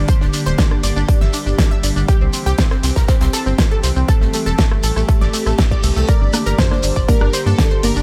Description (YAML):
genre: progressive house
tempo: 120 BPM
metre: 4/4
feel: straight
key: G dorian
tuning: A4 = 441 Hz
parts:
  - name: evolving wavetable pad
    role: sustained chords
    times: 0.0-8.0 s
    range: D3 to G4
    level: -27 LUFS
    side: equal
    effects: phaser, built-in reverb, sidechain pumping
  - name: analog pluck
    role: arpeggios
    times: 0.0-8.0 s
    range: A3 to E5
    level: -26 LUFS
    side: equal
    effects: ensemble chorus, sidechain pumping, tape echo
  - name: round analog bass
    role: bass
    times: 0.0-8.0 s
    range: D1 to G2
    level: -21 LUFS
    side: equal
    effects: tube saturation, sidechain pumping
  - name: electronic kick drum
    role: drums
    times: 0.1-7.7 s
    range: none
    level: -17 LUFS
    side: equal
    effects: none
  - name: modern studio drum kit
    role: drums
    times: 0.1-8.0 s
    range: hi-hat, snare drum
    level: -36 LUFS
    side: equal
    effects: sidechain pumping on hats, high-pass filter on hats, high-pass filter on snare, high-pass filter on room
  - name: shekere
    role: percussion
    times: 0.1-8.0 s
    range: none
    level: -30 LUFS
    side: equal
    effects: none
  - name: big-room dance drum kit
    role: drums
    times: 0.3-7.9 s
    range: hi-hat, rim click, snare drum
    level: -25 LUFS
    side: equal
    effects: none
  - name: reverse cymbal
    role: sound effects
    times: 5.6-6.1 s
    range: none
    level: -38 LUFS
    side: equal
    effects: none
  - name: plucky unison lead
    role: melody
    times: 6.1-8.0 s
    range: A4 to D5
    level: -26 LUFS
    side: equal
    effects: none
  - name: punchy analog drum machine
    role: percussion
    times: 6.3-7.9 s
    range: congas, rim click, toms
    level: -24 LUFS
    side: equal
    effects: sidechain pumping on snare, sidechain pumping on perc, sidechain pumping on toms
room: digital ambience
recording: none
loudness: -16 LUFS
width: mono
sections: 0.0-8.0 A section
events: reverse cymbal 5.6-6.1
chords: 0.0 Gm; 2.1 C; 4.1 Am7; 6.1 Gm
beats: | 0.09 0.58 1.08 1.58 | 2.08 2.58 3.08 3.58 | 4.08 4.58 5.08 5.58 | 6.08 6.58 7.08 7.58